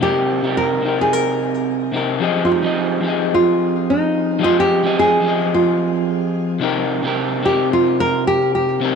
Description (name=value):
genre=chillout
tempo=109 BPM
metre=4/4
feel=swing 56% on 16ths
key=F minor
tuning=A4 = 440 Hz
part: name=nylon-string guitar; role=melody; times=0.0-9.0 s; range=Eb4 to Bb4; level=-18 LUFS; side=right 1 dB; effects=shimmer reverb, digital delay
part: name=electric guitar through a small old amp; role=accompaniment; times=0.0-9.0 s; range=C3 to Eb5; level=-19 LUFS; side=moving between left 6 dB and right 5 dB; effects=auto-pan, low-pass filter, shimmer reverb, digital delay
room=moderate lush hall reverb, RT60 2.4 s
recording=none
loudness=-15 LUFS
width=side -6 dB against mid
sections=0.0-9.0 A section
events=none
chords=0.0 Cm7; 2.2 Fm7; 6.6 Cm7